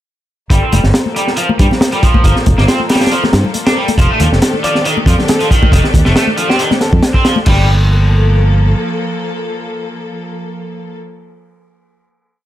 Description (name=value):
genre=breakbeat, breaks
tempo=138 BPM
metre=4/4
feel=swing 53% on 16ths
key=G minor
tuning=A4 = 440 Hz
part: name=bright symphonic string section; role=sustained chords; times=0.5-11.0 s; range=Eb3 to A4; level=-21 LUFS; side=left 1 dB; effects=sidechain pumping
part: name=crunchy overdriven guitar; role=riff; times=0.5-7.7 s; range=Eb3 to D4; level=-17 LUFS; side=right 1 dB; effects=tube saturation, vintage 12-bit sampler grit, low-pass filter, ping-pong delay
part: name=fingered electric bass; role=bass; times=0.5-8.7 s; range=F1 to G2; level=-11 LUFS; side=equal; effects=none
part: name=crunchy breakbeat drum kit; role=drums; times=0.5-7.6 s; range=crash cymbal, hi-hat, kick drum, snare drum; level=-13 LUFS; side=equal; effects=none
part: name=congas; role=percussion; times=0.7-7.4 s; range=none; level=-20 LUFS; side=left 4 dB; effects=none
part: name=soft struck synth lead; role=melody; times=4.6-7.4 s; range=G4 to D5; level=-22 LUFS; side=equal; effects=chorus, AM radio sound, ping-pong delay
room=small room ambience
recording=none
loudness=-10 LUFS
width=side -13 dB against mid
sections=0.5-7.5 groove; 7.5-10.9 final chord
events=none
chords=0.5 Gm9; 4.0 F13; 7.5 Gm9